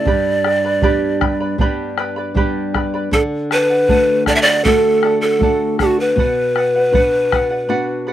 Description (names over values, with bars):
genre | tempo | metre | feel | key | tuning
andean folk, Andean ensemble | 79 BPM | 4/4 | straight | unclear | A4 = 440 Hz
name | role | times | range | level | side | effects
breathy large pan pipes | melody | 0.0-8.1 s | F#4 to E5 | -15 LUFS | right 1 dB | none
charango | accompaniment | 0.0-8.1 s | G4 to B5 | -24 LUFS | right 4 dB | none
flamenco guitar | accompaniment | 0.0-8.1 s | G2 to F#4 | -22 LUFS | left 2 dB | none
bombo | percussion | 0.1-7.5 s | none | -19 LUFS | right 1 dB | none
room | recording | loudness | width
light reverb | dry, close 1970s-style studio recording | -13 LUFS | side -12 dB against mid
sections
0.0-8.1 A section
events
break 7.7-8.1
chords
0.1 G; 3.1 D; 6.2 Bm